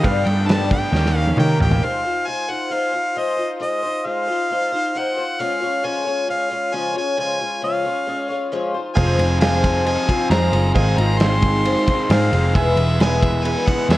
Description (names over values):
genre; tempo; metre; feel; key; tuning
folk rock and heartland rock; 134 BPM; 4/4; straight; unclear; A4 = 441 Hz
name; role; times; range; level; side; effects
clear harmonica; melody; 0.0-14.0 s; Eb5 to C6; -23 LUFS; equal; analog delay
bright upright piano; accompaniment; 0.0-1.8, 9.0-14.0 s; Ab4 to B5; -29 LUFS; right 4 dB; none
picked twelve-string acoustic guitar; accompaniment; 0.0-14.0 s; G2 to Db5; -24 LUFS; left 3 dB; analog chorus
raw garage guitar; riff; 0.0-1.8, 9.0-14.0 s; E2 to Ab4; -24 LUFS; right 1 dB; overdrive
picked electric bass; bass; 0.0-1.8, 9.0-14.0 s; E1 to Eb3; -19 LUFS; equal; none
natural country drum kit; drums; 0.0-1.8, 9.0-14.0 s; crash cymbal, kick drum, ride cymbal, snare drum, toms; -21 LUFS; equal; none
room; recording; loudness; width
light reverb, studio reverb; worn, warbling old tape, cassette tape, warbly pitch drift; -17 LUFS; side -16 dB against mid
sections
0.0-1.8 A section; 1.8-14.0 A section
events
drum fill 0.9-1.8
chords
0.0 Gadd9; 0.9 Eb7; 1.8 Ab6; 5.4 Db; 8.7 Fm7; 10.8 Ab6; 12.6 E